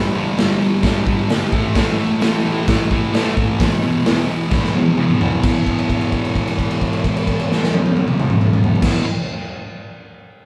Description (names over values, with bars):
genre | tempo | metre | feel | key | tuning
garage rock duo or trio | 131 BPM | 4/4 | straight | E minor | A4 = 440 Hz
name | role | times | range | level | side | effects
fuzz guitar | riff | 0.0-9.1 s | E2 to A3 | -21 LUFS | equal | distortion
raw garage drum kit | drums | 0.4-8.9 s | crash cymbal, hi-hat, kick drum, snare drum, toms | -20 LUFS | equal | none
room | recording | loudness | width
moderate small room reverb, RT60 0.5 s | band playing live in one room | -17 LUFS | mono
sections
0.0-5.4 A section; 5.4-9.1 B section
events
drum fill 4.5-5.4; held note 5.4-8.8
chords
0.0 G5; 1.5 A5; 3.6 E5